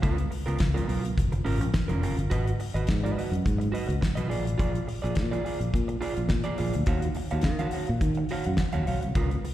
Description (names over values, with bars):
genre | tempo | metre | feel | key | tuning
disco | 105 BPM | 4/4 | straight | G# dorian | A4 = 440 Hz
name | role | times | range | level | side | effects
electric guitar through a small old amp | accompaniment | 0.0-9.5 s | B3 to E#5 | -32 LUFS | right 3 dB | plate reverb, slapback echo
fingered electric bass | bass | 0.0-9.4 s | E#1 to D#3 | -27 LUFS | equal | none
damped 70s drum kit | drums | 0.0-9.5 s | hi-hat, kick drum, snare drum | -29 LUFS | equal | none
room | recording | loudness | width
light reverb | live gig heard through the venue's PA, recital hall reverb | -25 LUFS | side -13 dB against mid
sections
0.0-2.3 A section; 2.3-9.5 B section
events
none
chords
0.0 C#6; 1.2 F#maj7; 2.3 G#m7; 4.3 A#7; 6.9 D#m9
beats
| 0.03 0.60 1.17 1.74 | 2.31 2.88 3.46 4.03 | 4.60 5.17 5.74 6.31 | 6.88 7.45 8.02 8.59 | 9.16